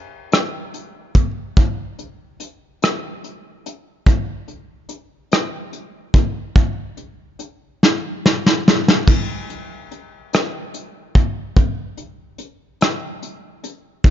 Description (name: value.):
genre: pop.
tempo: 48 BPM (dotted quarters).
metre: 6/8.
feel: straight.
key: none.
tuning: none.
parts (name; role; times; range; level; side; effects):
soft brush drum kit; drums; 0.3-14.1 s; crash cymbal, hi-hat, kick drum, rim click, snare drum; -16 LUFS; equal; none.
room: little or no reverb.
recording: dark, warm production, nothing above 7.5 kHz.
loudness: -16 LUFS.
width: side -11 dB against mid.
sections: 0.0-9.1 A section; 9.1-14.1 B section.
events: drum fill 7.8-9.1.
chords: none.